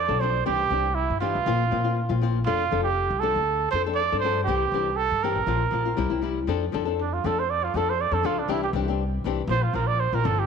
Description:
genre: highlife guitar band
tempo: 119 BPM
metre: 4/4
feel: swing 54% on 16ths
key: F major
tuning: A4 = 440 Hz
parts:
  - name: warm trumpet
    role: melody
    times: 0.0-10.5 s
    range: D4 to D5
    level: -25 LUFS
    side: right 7 dB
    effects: none
  - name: upright bass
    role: bass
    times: 0.0-10.5 s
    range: F1 to Bb2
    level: -28 LUFS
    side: left 1 dB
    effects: none
  - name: nylon-string guitar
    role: accompaniment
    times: 0.1-10.4 s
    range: E3 to A4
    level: -28 LUFS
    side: left 12 dB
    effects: none
room: moderate echo chamber reverb, RT60 2.0 s, studio reverb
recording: 1960s-style stereo with parts hard left and right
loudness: -22 LUFS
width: side -6 dB against mid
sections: 0.0-6.5 A section; 6.5-10.5 B section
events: trumpet solo 6.5-10.5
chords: 0.5 Cadd9; 1.5 Bbsus2; 2.5 F6; 4.5 Cadd9; 5.5 Bbsus2; 6.0 C; 6.5 F6; 8.5 Cadd9; 9.5 Bbsus2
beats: | 0.46 0.96 1.47 1.97 | 2.47 2.98 3.48 3.98 | 4.48 4.98 5.48 5.99 | 6.49 6.99 7.49 7.99 | 8.50 9.00 9.50 10.01

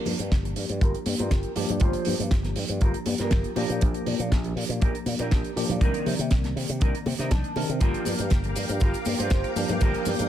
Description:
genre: nu-disco, nu disco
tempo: 120 BPM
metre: 4/4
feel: straight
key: G minor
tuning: A4 = 441 Hz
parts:
  - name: tine electric piano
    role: accompaniment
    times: 0.0-10.3 s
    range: Eb3 to D5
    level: -31 LUFS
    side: equal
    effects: overdrive, medium stereo tremolo, sidechain pumping, dub echo
  - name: mellow electric guitar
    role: riff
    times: 0.0-10.1 s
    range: D4 to A5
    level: -33 LUFS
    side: right 2 dB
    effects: analog chorus, low-pass filter, dub echo
  - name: slap bass with an envelope filter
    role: bass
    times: 0.1-10.3 s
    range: G1 to C3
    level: -29 LUFS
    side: equal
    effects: none
  - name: damped 70s drum kit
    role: drums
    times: 0.1-10.3 s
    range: finger snaps, hi-hat, shaker, snare drum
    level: -33 LUFS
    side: right 2 dB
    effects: none
  - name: congas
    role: percussion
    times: 0.1-10.2 s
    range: none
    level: -33 LUFS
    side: left 4 dB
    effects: none
  - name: kick drum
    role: drums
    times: 0.3-9.9 s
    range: none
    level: -23 LUFS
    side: equal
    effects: none
  - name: string machine, full ensemble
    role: sustained chords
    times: 7.8-10.3 s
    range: Bb4 to D6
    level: -32 LUFS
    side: right 1 dB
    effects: phaser, ensemble chorus, sidechain pumping
room: little or no reverb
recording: none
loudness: -23 LUFS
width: side -11 dB against mid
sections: 0.0-10.3 A section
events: filter sweep on clean electric guitar 0.0-10.3; clean electric guitar fill 7.1-7.8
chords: 0.0 Gm7; 3.6 Bb6; 5.8 Cm9; 7.8 Gm7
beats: 0.31 0.81 1.31 | 1.81 2.31 2.81 3.31 | 3.81 4.31 4.81 5.31 | 5.81 6.31 6.81 7.31 | 7.81 8.31 8.81 9.31 | 9.81

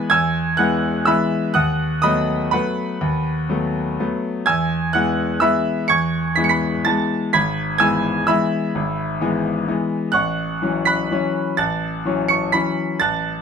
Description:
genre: classical, piano waltz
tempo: 126 BPM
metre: 3/4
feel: uneven beats, rubato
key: E major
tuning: A4 = 440 Hz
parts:
  - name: bright grand piano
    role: solo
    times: 0.0-13.4 s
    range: G#1 to C#7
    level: -17 LUFS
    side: equal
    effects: none
room: light reverb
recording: minimal, uncompressed stereo recording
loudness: -17 LUFS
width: side -6 dB against mid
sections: 0.0-13.4 A section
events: none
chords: 0.0 E; 1.6 B7/D#; 4.5 E; 7.3 E/G#; 10.1 F#m7/A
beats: | 0.10 0.58 1.07 | 1.55 2.03 2.52 | 3.00 3.48 3.97 | 4.45 4.93 5.41 | 5.89 6.36 6.85 | 7.33 7.80 8.27 | 8.74 9.20 9.67 | 10.13 10.61 11.11 | 11.57 12.04 12.53 | 12.99

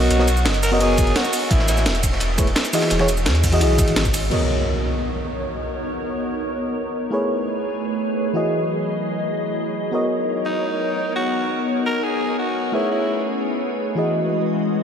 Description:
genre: liquid drum and bass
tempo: 171 BPM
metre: 4/4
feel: straight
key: B major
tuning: A4 = 439 Hz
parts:
  - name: growling tenor saxophone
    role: melody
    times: 0.0-2.0, 10.5-13.2 s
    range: D#4 to A#4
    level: -26 LUFS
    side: equal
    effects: tape echo
  - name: mellow FM electric piano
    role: accompaniment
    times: 0.0-14.8 s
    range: E3 to D#5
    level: -23 LUFS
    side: equal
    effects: chorus, tape echo
  - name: warm sub bass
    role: bass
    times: 0.0-4.3 s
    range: E1 to E2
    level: -20 LUFS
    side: equal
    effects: tube saturation
  - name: breakbeat sampler-style drum kit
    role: drums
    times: 0.1-4.4 s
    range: crash cymbal, hi-hat, ride cymbal, shaker, snare drum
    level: -24 LUFS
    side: right 1 dB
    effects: none
  - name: crunchy breakbeat drum kit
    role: drums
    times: 0.1-4.2 s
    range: hi-hat, ride cymbal, snare drum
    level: -30 LUFS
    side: equal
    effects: high-pass filter on cymbals, high-pass filter on hats, high-pass filter on snare, high-pass filter on room
  - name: electronic kick drum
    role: drums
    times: 1.0-4.1 s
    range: none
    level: -20 LUFS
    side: equal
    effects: none
  - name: glassy FM pad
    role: sustained chords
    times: 4.7-14.8 s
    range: F#3 to D#5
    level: -24 LUFS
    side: left 1 dB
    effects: ensemble chorus, built-in reverb, sidechain pumping
  - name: impact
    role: sound effects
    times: 4.3-5.7 s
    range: none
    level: -27 LUFS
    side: equal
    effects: none
room: wet huge ambient reverb, RT60 8.4 s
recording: dreamy mix soaked in reverb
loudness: -18 LUFS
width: side -8 dB against mid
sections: 0.0-4.3 A section; 4.3-14.8 B section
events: drop 0.0-4.3; impact 4.3-5.7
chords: 0.0 Bmaj9; 1.5 A5; 2.7 Emaj9; 4.3 Bmaj9; 7.1 Amaj9; 8.4 Emaj9; 9.9 Bmaj9; 12.7 Amaj9; 14.0 Emaj9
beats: | 0.10 0.46 0.81 1.16 | 1.51 1.86 2.21 2.56 | 2.91 3.26 3.61 3.96 | 4.32 4.67 5.02 5.37 | 5.72 6.07 6.42 6.77 | 7.12 7.47 7.83 8.18 | 8.53 8.88 9.23 9.58 | 9.93 10.28 10.63 10.98 | 11.33 11.68 12.04 12.39 | 12.74 13.09 13.44 13.79 | 14.14 14.49

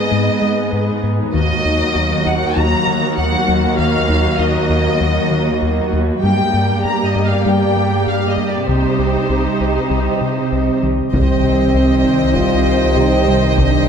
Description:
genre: cinematic, hybrid orchestral and electronic film score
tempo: 98 BPM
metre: 4/4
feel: straight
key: unclear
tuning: A4 = 442 Hz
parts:
  - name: warm symphonic violin section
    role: melody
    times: 0.0-13.9 s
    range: C5 to Bb5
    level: -21 LUFS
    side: left 1 dB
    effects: none
  - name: dark symphonic viola section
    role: accompaniment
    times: 0.0-13.9 s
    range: Bb3 to C5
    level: -22 LUFS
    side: right 1 dB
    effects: none
  - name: warbly tape-like pad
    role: sustained chords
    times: 0.0-13.9 s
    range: Gb3 to Eb5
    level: -21 LUFS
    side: equal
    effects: chorus, built-in reverb, phaser
  - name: warm symphonic cello section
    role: bass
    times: 0.0-13.9 s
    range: Eb2 to C3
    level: -21 LUFS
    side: right 3 dB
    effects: none
  - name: warbly dusty pluck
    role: arpeggios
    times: 0.1-13.8 s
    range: C3 to G4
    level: -24 LUFS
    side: left 1 dB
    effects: chorus, tape echo
  - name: round analog bass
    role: riff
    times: 0.1-13.8 s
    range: C2 to Ab3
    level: -21 LUFS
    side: left 1 dB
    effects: none
  - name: rich chamber violin section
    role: second line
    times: 11.1-13.9 s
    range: Eb5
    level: -22 LUFS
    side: left 4 dB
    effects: none
  - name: mellow French horn section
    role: sustained chords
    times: 11.1-13.9 s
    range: C4 to F4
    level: -17 LUFS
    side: left 2 dB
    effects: none
  - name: warm trombone section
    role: sustained chords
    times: 11.1-13.9 s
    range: Eb3 to G3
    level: -23 LUFS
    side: right 4 dB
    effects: none
  - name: rich symphonic double bass section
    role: bass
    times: 11.1-13.9 s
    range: C2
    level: -23 LUFS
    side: right 4 dB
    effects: none
  - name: saturated sub bass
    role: bass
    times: 11.1-13.9 s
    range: C2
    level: -21 LUFS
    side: equal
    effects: none
  - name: taiko ensemble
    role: drums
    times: 11.1-13.9 s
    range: none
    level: -22 LUFS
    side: equal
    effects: none
room: moderate scoring stage reverb, RT60 2.1 s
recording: none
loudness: -13 LUFS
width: side -7 dB against mid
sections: 0.0-11.1 A section; 11.1-13.9 B section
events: none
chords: 0.0 Abm; 1.3 Ebm; 6.2 Gm; 8.7 Cm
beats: 0.12 0.73 | 1.34 1.95 2.56 3.18 | 3.79 4.40 5.01 5.63 | 6.24 6.85 7.46 8.07 | 8.69 9.30 9.91 10.52 | 11.14 11.75 12.36 12.97 | 13.59

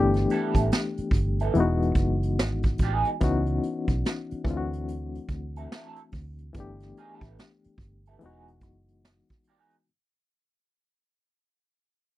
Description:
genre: R&B, neo-soul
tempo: 72 BPM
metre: 4/4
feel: swing 62% on 16ths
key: unclear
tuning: A4 = 440 Hz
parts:
  - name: reed electric piano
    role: accompaniment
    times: 0.0-9.9 s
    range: E3 to G4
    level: -28 LUFS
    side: left 4 dB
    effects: tremolo
  - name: vintage muted fingered electric bass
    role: bass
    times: 0.0-9.2 s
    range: E1 to D2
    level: -28 LUFS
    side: right 1 dB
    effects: none
  - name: vintage brush drum kit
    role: drums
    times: 0.1-9.9 s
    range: hi-hat, kick drum, snare drum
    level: -27 LUFS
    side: right 1 dB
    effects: none
  - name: electric guitar through a small old amp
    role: second line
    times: 0.3-9.7 s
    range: F#3 to A4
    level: -30 LUFS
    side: right 6 dB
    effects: wah, lush chorus
room: little or no reverb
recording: dry, close 1970s-style studio recording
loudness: -24 LUFS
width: side -15 dB against mid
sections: 0.0-9.9 A section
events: fade-out 0.0-9.9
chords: 0.0 G69; 1.5 Emaj9; 3.2 C#m11; 4.5 D9; 6.5 G69; 8.2 Emaj9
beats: 0.71 1.55 2.38 | 3.21 4.05 4.88 5.71 | 6.55 7.38 8.21 9.05

